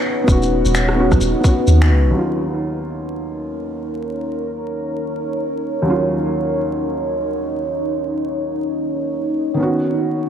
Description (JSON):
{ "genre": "future garage", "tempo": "free time", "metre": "none", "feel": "none", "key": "Eb minor", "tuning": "A4 = 440 Hz", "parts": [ { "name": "felt-muted upright piano", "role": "accompaniment", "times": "0.0-10.3 s", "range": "Eb2 to F#4", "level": "-22 LUFS", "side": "right 1 dB", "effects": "sidechain pumping, low-pass filter, tape echo" }, { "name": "deep dark ambient pad", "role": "sustained chords", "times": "0.0-10.3 s", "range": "Eb4 to C#5", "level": "-21 LUFS", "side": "equal", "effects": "chorus, built-in reverb, vintage 12-bit sampler grit, sidechain pumping" }, { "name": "soft 808-style bass", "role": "bass", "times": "0.3-2.1 s", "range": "Eb1 to Eb2", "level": "-15 LUFS", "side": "equal", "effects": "none" }, { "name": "electronic kick drum", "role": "drums", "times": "0.3-1.6 s", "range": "none", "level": "-16 LUFS", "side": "equal", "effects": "none" }, { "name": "electronic shaker, finger snaps and rim click", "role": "drums", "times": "0.3-1.9 s", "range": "none", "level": "-24 LUFS", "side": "equal", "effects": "low-pass filter on perc, low-pass filter on snare, low-pass filter on room" } ], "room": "moderate lush hall reverb, RT60 2.2 s", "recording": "vinyl crackle", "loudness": "-17 LUFS", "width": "side -9 dB against mid", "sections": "0.0-2.1 A section; 2.1-10.3 B section", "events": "none", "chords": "0.0 Bsus2/Eb; 2.1 Ebm7; 9.6 Bsus2/Eb" }